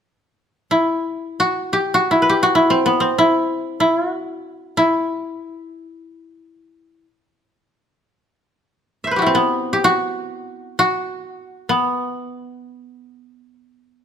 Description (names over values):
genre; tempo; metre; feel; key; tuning
japanese traditional; free time; none; none; E hirajoshi; A4 = 440 Hz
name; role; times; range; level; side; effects
koto; solo; 0.7-14.0 s; B3 to E5; -17 LUFS; equal; none
room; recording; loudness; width
light reverb; close, detailed microphones; -16 LUFS; side -8 dB against mid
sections
0.0-14.0 A section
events
none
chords
none